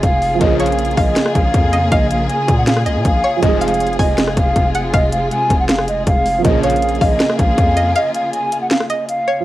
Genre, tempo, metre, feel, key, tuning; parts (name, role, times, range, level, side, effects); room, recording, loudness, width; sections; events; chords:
hip hop, trap; 159 BPM; 4/4; half-time; Bb minor; A4 = 439 Hz
breathy mellow silver concert flute; melody; 0.0-9.4 s; Eb5 to Ab5; -18 LUFS; equal; low-pass filter, cassette tape
dark concert grand piano; accompaniment; 0.0-9.4 s; F3 to Ab4; -23 LUFS; right 8 dB; low-pass filter, cassette tape
warm symphonic string section; sustained chords; 0.0-9.4 s; C3 to Ab4; -22 LUFS; left 1 dB; cassette tape
distorted 808-style bass; bass; 0.0-7.9 s; F1 to Bb2; -20 LUFS; equal; distortion
trap drum kit; drums; 0.0-9.2 s; hi-hat, kick drum, rim click, snare drum; -16 LUFS; equal; overdrive
big bright polysynth; stabs; 0.4-0.7, 3.4-3.7, 6.4-6.7 s; Ab2 to F3; -25 LUFS; left 7 dB; cassette tape, tape echo
string-like resonator pluck; second line; 0.6-9.4 s; Db5 to Ab5; -23 LUFS; left 1 dB; chorus, phaser, cassette tape, tape echo
studio reverb; home recording on cassette; -13 LUFS; side -15 dB against mid
0.0-9.4 A section
break 8.0-9.4
0.4 Bbm7; 3.4 Fm; 6.4 Bbm7